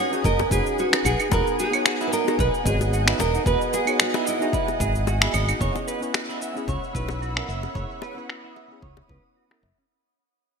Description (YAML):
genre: sunset chillout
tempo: 112 BPM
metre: 4/4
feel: swing 54% on 16ths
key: unclear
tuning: A4 = 435 Hz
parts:
  - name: nylon-string guitar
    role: melody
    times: 0.0-5.3 s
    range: E4 to C#5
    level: -26 LUFS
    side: right 2 dB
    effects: ping-pong delay
  - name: mellow tine electric piano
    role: accompaniment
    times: 0.0-9.7 s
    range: B3 to D#5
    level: -31 LUFS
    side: equal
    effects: auto-pan, digital delay
  - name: ethereal airy pad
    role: sustained chords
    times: 0.0-9.9 s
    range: B4 to E6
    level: -30 LUFS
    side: right 1 dB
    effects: ensemble chorus, built-in reverb
  - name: clean electric guitar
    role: arpeggios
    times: 0.0-9.8 s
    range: C#4 to F#5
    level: -31 LUFS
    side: right 2 dB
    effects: wide subtle chorus, low-pass filter, digital delay
  - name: electronic cabasa, finger snaps and claves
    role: drums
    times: 0.1-9.9 s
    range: none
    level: -25 LUFS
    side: equal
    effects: overdrive, low-pass filter on perc, low-pass filter on snare
  - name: fingered electric bass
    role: bass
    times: 0.2-9.7 s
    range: E1 to C#2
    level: -25 LUFS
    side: equal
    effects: none
  - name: electronic kick drum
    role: drums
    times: 0.2-9.7 s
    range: none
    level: -29 LUFS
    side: equal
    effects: overdrive
  - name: bongos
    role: percussion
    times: 0.4-9.6 s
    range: none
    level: -32 LUFS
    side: left 9 dB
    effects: none
room: moderate lush hall reverb, RT60 1.9 s, digital ambience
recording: bright 1980s-style digital production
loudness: -20 LUFS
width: side -6 dB against mid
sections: 0.0-5.6 A section; 5.6-9.9 B section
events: fade-out 5.6-9.9; filter sweep on clean electric guitar 5.6-9.9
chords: 0.0 B6; 1.3 Emaj9; 5.6 F#7sus4